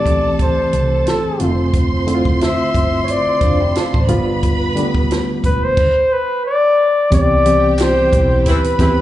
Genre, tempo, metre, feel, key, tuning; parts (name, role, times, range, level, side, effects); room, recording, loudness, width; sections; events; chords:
lush 1970s-style soul; 89 BPM; 4/4; swing 54% on 16ths; A4 = 439 Hz
breathy flugelhorn; melody; 0.0-9.0 s; A4 to E5; -16 LUFS; left 1 dB; slapback echo, tape echo
warm symphonic violin section; second line; 0.0-9.0 s; G4 to C6; -25 LUFS; right 1 dB; slapback echo
reed electric piano; accompaniment; 0.0-9.0 s; D3 to G4; -19 LUFS; equal; overdrive, fast tremolo
hollow-body short-scale fingered electric bass; bass; 0.0-9.0 s; E1 to E2; -19 LUFS; equal
compact cocktail drum kit; drums; 0.1-9.0 s; crash cymbal, hi-hat, kick drum, snare drum; -19 LUFS; equal
electric guitar through a small old amp; riff; 3.4-4.3 s; D4 to C5; -26 LUFS; right 7 dB; tremolo, slapback echo
warm studio string section; sustained chords; 7.1-9.0 s; E3 to E4; -29 LUFS; left 2 dB
group handclap; percussion; 7.8-8.0 s; -33 LUFS; equal
clear horn section; stabs; 8.5-9.0 s; E3 to E4; -23 LUFS; equal; slapback echo
small room ambience; live gig heard through the venue's PA, club reverb, nothing above 10.9 kHz; -13 LUFS; side -14 dB against mid
0.0-7.1 A section; 7.1-9.0 B section
0.0 Am7; 1.4 F6; 4.1 G7; 7.1 Cmaj7